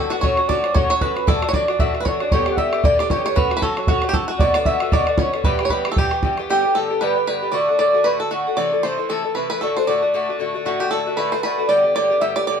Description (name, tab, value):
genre	celtic folk, Celtic reel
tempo	230 BPM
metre	4/4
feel	swing 57% on 8ths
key	E dorian, G major from 6.5 s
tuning	A4 = 440 Hz
part	mellow accordion	melody	0.0-12.6 s	F#4 to F#5	-20 LUFS	right 1 dB	none
part	bluegrass banjo	second line	0.0-12.6 s	F#4 to E5	-25 LUFS	right 3 dB	none
part	Irish bouzouki	accompaniment	0.0-12.6 s	G2 to G4	-23 LUFS	left 4 dB	none
part	bodhran	percussion	0.1-6.4 s	none	-21 LUFS	right 1 dB	none
room	wet studio reverb, RT60 0.5 s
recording	band playing live in one room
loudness	-17 LUFS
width	side -7 dB against mid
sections	0.0-6.5 A section; 6.5-12.6 B section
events	none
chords	0.2 F#m; 1.3 Dadd9; 2.3 G; 3.4 F#m; 4.4 Bm; 5.4 Em; 6.5 G; 7.5 D; 8.6 Am; 9.6 D; 11.7 G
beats	| 0.23 0.49 0.75 1.01 | 1.27 1.53 1.79 2.06 | 2.32 2.58 2.84 3.10 | 3.36 3.62 3.88 4.14 | 4.40 4.67 4.93 5.19 | 5.45 5.71 5.97 6.23 | 6.49 6.75 7.01 7.27 | 7.53 7.79 8.05 8.31 | 8.57 8.83 9.09 9.35 | 9.61 9.87 10.13 10.39 | 10.65 10.91 11.17 11.43 | 11.69 11.96 12.21 12.48